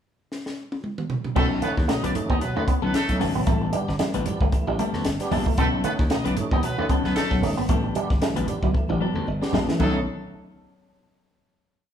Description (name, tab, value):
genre	funk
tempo	114 BPM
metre	4/4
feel	swing 56% on 16ths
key	B mixolydian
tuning	A4 = 443 Hz
part	compact cocktail drum kit	drums	0.3-9.9 s	crash cymbal, hi-hat, kick drum, snare drum, toms	-25 LUFS	equal	none
part	clear horn section	second line	1.4-10.0 s	F#3 to D#5	-30 LUFS	equal	none
part	clean electric guitar	accompaniment	1.4-10.0 s	F#3 to B4	-30 LUFS	left 6 dB	spring reverb
part	electric guitar with an envelope filter	riff	1.4-10.0 s	D#3 to B3	-28 LUFS	right 3 dB	tube saturation, warbly pitch drift
part	tonewheel organ	stabs	1.4-10.0 s	A2 to D#4	-31 LUFS	right 2 dB	overdrive, chorus vibrato, slow rotary speaker
part	slap bass	bass	1.4-10.0 s	G1 to D#2	-29 LUFS	equal	none
part	congas	percussion	1.4-10.0 s	none	-34 LUFS	right 5 dB	none
room	moderate large studio reverb, RT60 1.1 s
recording	band playing live in one room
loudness	-21 LUFS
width	side -9 dB against mid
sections	0.0-1.4 pickup bar; 1.4-9.8 groove; 9.8-11.9 final chord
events	drum fill 0.3-1.4, 8.7-9.8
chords	0.0 N.C.; 1.4 B9; 3.5 A9sus4; 5.6 B9; 7.7 A9sus4; 9.8 B9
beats	0.31 0.84 | 1.36 1.89 2.42 2.94 | 3.47 4.00 4.53 5.05 | 5.58 6.11 6.64 7.16 | 7.69 8.22 8.75 9.28 | 9.81